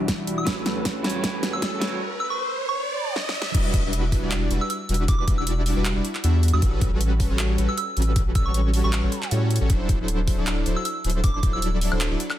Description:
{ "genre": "future bass", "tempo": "156 BPM", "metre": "4/4", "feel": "swing 54% on 16ths, half-time", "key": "E minor", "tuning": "A4 = 440 Hz", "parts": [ { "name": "clean electric guitar", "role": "accompaniment", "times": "0.0-2.0 s", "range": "E3 to D5", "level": "-32 LUFS", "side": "right 3 dB", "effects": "vintage 12-bit sampler grit, sidechain pumping, tape echo" }, { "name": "airy breathy pad", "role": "sustained chords", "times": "0.0-2.0 s", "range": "E3 to F#5", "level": "-39 LUFS", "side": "left 1 dB", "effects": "none" }, { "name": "soft supersaw", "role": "riff", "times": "0.0-12.2 s", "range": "F#3 to E5", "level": "-28 LUFS", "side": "equal", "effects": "cassette tape, sidechain pumping, low-pass filter" }, { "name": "saturated sub bass", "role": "bass", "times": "0.0-12.2 s", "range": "D1 to A2", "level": "-24 LUFS", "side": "equal", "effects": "sidechain pumping" }, { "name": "riser", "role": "sound effects", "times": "0.0-3.5 s", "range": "none", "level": "-31 LUFS", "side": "right 1 dB", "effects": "none" }, { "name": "dubstep drum kit", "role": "drums", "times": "0.1-12.4 s", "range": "crash cymbal, handclaps, hi-hat, snare drum, woodblock", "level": "-28 LUFS", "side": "equal", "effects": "soft clipping on snare, studio reverb" }, { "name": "electronic kick drum", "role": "drums", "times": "0.1-11.5 s", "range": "none", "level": "-22 LUFS", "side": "equal", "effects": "studio reverb" }, { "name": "soft synth bell", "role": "melody", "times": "0.4-11.7 s", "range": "C#6 to E6", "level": "-30 LUFS", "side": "right 1 dB", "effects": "chorus, phaser, sidechain pumping, tape echo" } ], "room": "digital ambience", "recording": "dense, heavily limited modern master, high-pass filter", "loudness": "-21 LUFS", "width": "side -12 dB against mid", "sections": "0.0-3.5 A section; 3.5-12.4 B section", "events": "build-up 0.0-3.5; drum fill 0.0-2.0, 3.2-3.5; riser 0.0-3.5; filter sweep on supersaw synth 0.0-3.5; filter sweep 0.0-3.5; drop 3.5-12.4", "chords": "0.5 A13; 3.5 Em9; 6.6 A13; 9.7 D9", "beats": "0.08 | 0.47 0.85 1.24 1.62 | 2.01 2.39 2.78 3.16 | 3.54 3.93 4.31 4.70 | 5.08 5.47 5.85 6.24 | 6.62 7.01 7.39 7.78 | 8.16 8.54 8.93 9.31 | 9.70 10.08 10.47 10.85 | 11.24 11.62 12.01" }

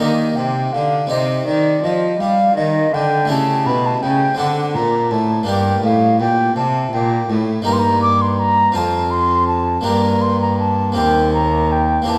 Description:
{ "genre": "classical, baroque-style sonata movement with continuo", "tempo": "55 BPM (dotted quarters)", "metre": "6/8", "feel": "straight", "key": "G minor", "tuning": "A4 = 441 Hz", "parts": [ { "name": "baroque flute", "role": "melody", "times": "0.0-12.2 s", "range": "D5 to D6", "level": "-20 LUFS", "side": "equal", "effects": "none" }, { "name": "harpsichord", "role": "accompaniment", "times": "0.0-12.2 s", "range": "Eb2 to C5", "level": "-23 LUFS", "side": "equal", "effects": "none" }, { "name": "warm cello", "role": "bass", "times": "0.0-12.2 s", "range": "Eb2 to G3", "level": "-22 LUFS", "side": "equal", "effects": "none" } ], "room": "wet recital hall reverb, RT60 1.7 s", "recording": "none", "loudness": "-17 LUFS", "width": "mono", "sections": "0.0-12.2 A section", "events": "none", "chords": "0.0 Eb; 1.1 Cm; 3.3 A7; 4.4 D5; 5.5 Gm; 7.7 Eb/G; 8.8 F5; 9.9 Gm; 11.0 Cm7/Eb", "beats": "| 1.10 2.19 | 3.29 4.38 | 5.48 6.57 | 7.66 8.76 | 9.86 10.96 | 12.08" }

